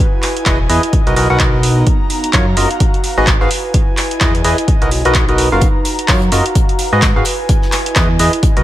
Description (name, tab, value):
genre	piano house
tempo	128 BPM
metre	4/4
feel	swing 59% on 16ths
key	unclear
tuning	A4 = 441 Hz
part	airy breathy pad	texture	0.0-8.6 s	B3 to A#5	-21 LUFS	equal	chorus, sidechain pumping
part	punchy analog drum machine	drums	0.2-8.6 s	handclaps, hi-hat	-18 LUFS	equal	none
part	percussive organ stab	riff	0.5-8.6 s	E4 to F#5	-18 LUFS	equal	chorus, sidechain pumping, dub echo
part	fat analog bass	bass	0.5-8.6 s	E1 to G#2	-16 LUFS	equal	sidechain pumping
part	electronic kick drum	drums	0.5-8.5 s	none	-14 LUFS	equal	none
part	damped 70s drum kit	drums	5.6-8.6 s	hi-hat, snare drum	-28 LUFS	left 4 dB	sidechain pumping on hats, high-pass filter on hats, high-pass filter on snare, high-pass filter on room
room	light reverb, digital ambience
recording	none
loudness	-11 LUFS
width	side -14 dB against mid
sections	0.0-8.6 A section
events	none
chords	0.0 Emaj7; 0.9 Bmaj7; 1.9 F#maj7; 2.8 G#m7; 3.5 Emaj7; 4.7 Bmaj7; 5.6 F#maj7; 6.6 G#m7; 7.3 Emaj7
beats	0.46 0.93 1.40 | 1.87 2.34 2.81 3.27 | 3.74 4.21 4.68 5.15 | 5.62 6.09 6.55 7.02 | 7.49 7.96 8.43